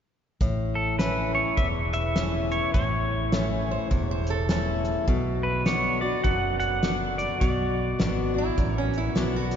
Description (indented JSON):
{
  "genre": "honky-tonk and classic country",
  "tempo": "103 BPM",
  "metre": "4/4",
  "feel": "swing 61% on 8ths",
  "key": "A major",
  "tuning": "A4 = 440 Hz",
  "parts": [
    { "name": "picked swing-style acoustic guitar", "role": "accompaniment", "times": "0.4-9.6 s", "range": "E2 to F#4", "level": "-29 LUFS", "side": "left 3 dB", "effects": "none" },
    { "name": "fingered electric bass", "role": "bass", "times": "0.4-9.6 s", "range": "E1 to B1", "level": "-29 LUFS", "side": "equal", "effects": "none" },
    { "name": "cloth-damped thuddy drum kit", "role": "drums", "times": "0.4-9.6 s", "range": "hi-hat, kick drum, snare drum", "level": "-29 LUFS", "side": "equal", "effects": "none" },
    { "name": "pedal steel guitar", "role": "melody", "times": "0.8-9.5 s", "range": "A4 to F#5", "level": "-29 LUFS", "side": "right 1 dB", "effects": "none" },
    { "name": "lap resonator guitar", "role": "second line", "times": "3.7-9.5 s", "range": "C#4 to C5", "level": "-34 LUFS", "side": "right 5 dB", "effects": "none" }
  ],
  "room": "wet cathedral reverb, RT60 5.8 s",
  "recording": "recorded in a church or concert hall, nothing above 7.6 kHz",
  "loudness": "-23 LUFS",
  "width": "side -8 dB against mid",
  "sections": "0.4-9.6 A section",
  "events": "none",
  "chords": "0.4 A; 5.1 Bm"
}